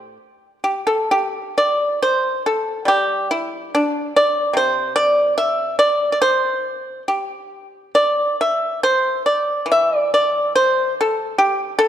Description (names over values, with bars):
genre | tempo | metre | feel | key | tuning
chinese traditional | 63-75 BPM | 2/4 | rubato | G zhi mode | A4 = 440 Hz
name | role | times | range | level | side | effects
pipa | solo | 0.0-11.9 s | A2 to E5 | -16 LUFS | equal | none
room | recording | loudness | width
moderate concert hall reverb, RT60 2.0 s | dark, warm production | -16 LUFS | side -10 dB against mid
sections
0.0-1.1 A section; 1.1-11.9 B section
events
none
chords
none